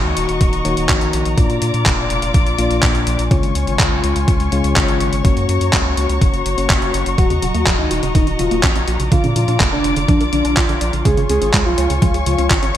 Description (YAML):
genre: italo disco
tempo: 124 BPM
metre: 4/4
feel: straight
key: Eb minor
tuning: A4 = 439 Hz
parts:
  - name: muted chamber string section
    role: sustained chords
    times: 0.0-12.8 s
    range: F4 to D6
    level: -22 LUFS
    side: left 3 dB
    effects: none
  - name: mellow tine electric piano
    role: stabs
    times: 0.0-7.2 s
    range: Bb2 to D5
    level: -21 LUFS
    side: left 3 dB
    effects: ping-pong delay
  - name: round analog bass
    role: bass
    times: 0.0-12.8 s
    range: Eb1 to Bb2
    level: -20 LUFS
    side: equal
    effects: none
  - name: dusty soul sampler-style drum kit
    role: drums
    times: 0.2-12.8 s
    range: handclaps, hi-hat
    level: -21 LUFS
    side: equal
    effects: studio ambience, gated reverb
  - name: electronic kick drum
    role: drums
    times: 0.4-12.6 s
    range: none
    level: -16 LUFS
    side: equal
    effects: overdrive, studio ambience
  - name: soft octave-layered synth lead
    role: melody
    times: 7.2-12.5 s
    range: D4 to Ab4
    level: -20 LUFS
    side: left 1 dB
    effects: chorus, cassette tape, digital delay
  - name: wide unison pluck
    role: arpeggios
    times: 7.2-12.8 s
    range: Db3 to D5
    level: -24 LUFS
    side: right 4 dB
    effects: ping-pong delay
room: moderate plate reverb, RT60 1.9 s, digital ambience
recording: bright 1980s-style digital production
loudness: -14 LUFS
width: side -11 dB against mid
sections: 0.0-12.8 A section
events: none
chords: 0.0 Ebm7; 1.4 Bb; 3.3 Db; 5.2 Gb; 7.2 Ebm7; 9.1 Bb; 11.1 Db